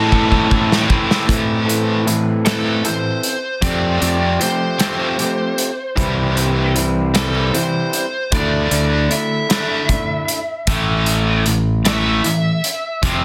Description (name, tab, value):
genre	quiet-loud alternative rock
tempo	51 BPM (dotted quarters)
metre	6/8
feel	straight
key	A minor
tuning	A4 = 440 Hz
part	lead guitar through a small cranked amp	melody	0.0-13.2 s	A4 to A5	-26 LUFS	equal	overdrive, plate reverb
part	biting overdriven guitar	riff	0.0-1.3, 10.7-13.2 s	F2 to A3	-23 LUFS	equal	none
part	overdriven electric guitar	riff	0.0-13.2 s	A2 to E4	-23 LUFS	equal	harmonic tremolo
part	thick fuzz guitar	riff	0.0-1.3 s	A2 to A3	-28 LUFS	equal	none
part	growling fingered electric bass	bass	0.0-13.2 s	F1 to A2	-22 LUFS	equal	overdrive
part	loose indie drum kit	drums	0.1-13.2 s	hi-hat, kick drum, snare drum	-22 LUFS	equal	none
part	electric guitar through a small old amp	arpeggios	1.3-10.4 s	D3 to A4	-25 LUFS	equal	plate reverb
room	light reverb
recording	dense, heavily limited modern master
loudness	-17 LUFS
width	mono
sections	0.0-1.3 A section; 1.3-13.2 B section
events	drum fill 0.1-1.3; lead electric guitar solo 1.3-13.2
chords	0.0 Am; 3.6 Fadd9; 6.0 C; 8.3 Dsus2; 10.7 A5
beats	0.12 | 1.29 2.46 | 3.63 4.80 | 5.98 7.15 | 8.33 9.50 | 10.68 11.85 | 13.03